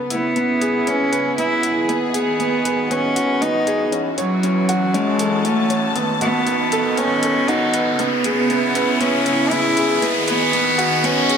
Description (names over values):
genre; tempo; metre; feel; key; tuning
piano and strings electronica; 118 BPM; 4/4; straight; C# minor; A4 = 440 Hz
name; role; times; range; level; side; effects
warm studio string section; sustained chords; 0.0-11.4 s; C#3 to A5; -24 LUFS; right 1 dB; none
riser; sound effects; 2.1-11.4 s; none; -25 LUFS; equal; none
rich cello; melody; 0.1-11.4 s; F#3 to E4; -19 LUFS; equal; ping-pong delay
bright grand piano; riff; 0.1-11.4 s; B3 to C#5; -22 LUFS; equal; ping-pong delay
electronic hi-hat; drums; 0.1-11.4 s; none; -29 LUFS; left 1 dB; overdrive
room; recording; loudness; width
moderate lush hall reverb, RT60 2.5 s; none; -16 LUFS; side -7 dB against mid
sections
0.0-11.4 A section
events
build-up 0.0-11.4; riser 2.1-11.4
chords
0.0 C#m7; 1.9 G#m7; 3.9 F#m7; 6.0 B7; 8.0 C#m7; 10.0 G#m7